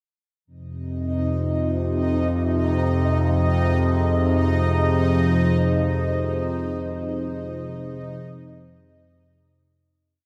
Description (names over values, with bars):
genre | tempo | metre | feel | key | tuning
dark ambient drone | free time | none | none | F minor | A4 = 438 Hz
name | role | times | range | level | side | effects
dark analog pad | sustained chords | 4.0-10.1 s | F3 to C5 | -32 LUFS | equal | chorus
analog drone | drone | 0.5-10.2 s | F2 to C3 | -24 LUFS | equal | chorus
bubbling stepped-filter texture | texture | 1.0-10.1 s | Eb4 to Eb5 | -31 LUFS | equal | chorus, built-in reverb
room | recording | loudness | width
wet cathedral reverb, RT60 5.2 s | in a vast, echoing space | -22 LUFS | mono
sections
0.5-10.1 A section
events
fade-in on analog synth pad 0.5-10.1; fade-out 5.3-10.1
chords
0.5 Fm